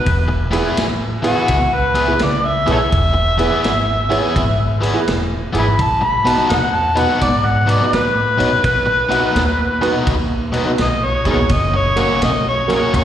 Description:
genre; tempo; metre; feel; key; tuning
electric blues shuffle; 84 BPM; 4/4; swing 65% on 8ths; B mixolydian; A4 = 440 Hz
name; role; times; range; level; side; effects
overdriven harmonica; melody; 0.0-13.0 s; F#4 to B5; -17 LUFS; left 1 dB; slapback echo
upright bass; bass; 0.1-13.0 s; E1 to A2; -20 LUFS; equal; none
vintage drum kit; drums; 0.1-13.0 s; kick drum, ride cymbal, snare drum; -22 LUFS; equal; slapback echo
crunchy overdriven guitar; riff; 0.3-13.0 s; B2 to G#4; -22 LUFS; left 4 dB; slapback echo
warm concert grand piano; accompaniment; 0.5-12.8 s; A#3 to C#5; -23 LUFS; right 6 dB; slapback echo
room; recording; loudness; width
light reverb, small room ambience; live gig heard through the venue's PA, recital hall reverb; -14 LUFS; side -10 dB against mid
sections
0.0-13.0 A section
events
harmonica solo 0.0-13.0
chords
0.1 E; 5.8 B; 11.5 F#

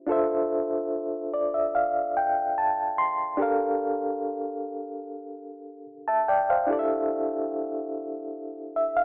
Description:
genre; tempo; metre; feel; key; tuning
soul; 73 BPM; 4/4; straight; D minor; A4 = 440 Hz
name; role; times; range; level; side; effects
reed electric piano; solo; 0.0-9.0 s; D4 to C6; -24 LUFS; equal; overdrive, fast tremolo
room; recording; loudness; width
light reverb; telephone sound; -24 LUFS; side -28 dB against mid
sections
0.0-3.4 A section; 3.4-9.0 B section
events
reed electric piano fill 0.9-3.4, 8.3-9.0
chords
0.1 Dm9; 3.4 Gm9; 6.7 A7sus4

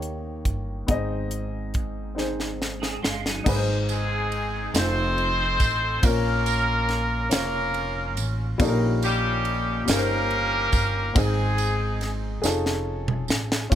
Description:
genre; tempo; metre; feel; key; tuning
slow gospel; 47 BPM (dotted quarters); 6/8; straight; unclear; A4 = 440 Hz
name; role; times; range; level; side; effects
dark upright piano; accompaniment; 0.0-13.8 s; Ab2 to Eb5; -28 LUFS; left 2 dB; none
upright bass; bass; 0.0-13.8 s; F1 to Eb2; -28 LUFS; right 1 dB; none
crisp fusion drum kit; drums; 0.0-13.8 s; crash cymbal, hi-hat, kick drum, ride cymbal, snare drum, splash cymbal, toms; -26 LUFS; equal; none
clean electric guitar; second line; 2.8-3.7 s; Gb3 to Ab4; -33 LUFS; right 4 dB; ensemble chorus, slapback echo
tambourine; percussion; 3.5-13.8 s; none; -34 LUFS; right 11 dB; none
clear horn section; melody; 3.9-12.4 s; G3 to C5; -25 LUFS; equal; none
room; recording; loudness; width
little or no reverb; none; -22 LUFS; side -10 dB against mid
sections
0.0-3.5 A section; 3.5-13.8 B section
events
drum fill 2.2-3.5, 12.4-13.7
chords
0.0 Eb7; 0.9 Ab; 4.7 F7; 6.0 Bbm; 8.6 Eb7/Bb; 11.2 Ab; 12.4 F7alt

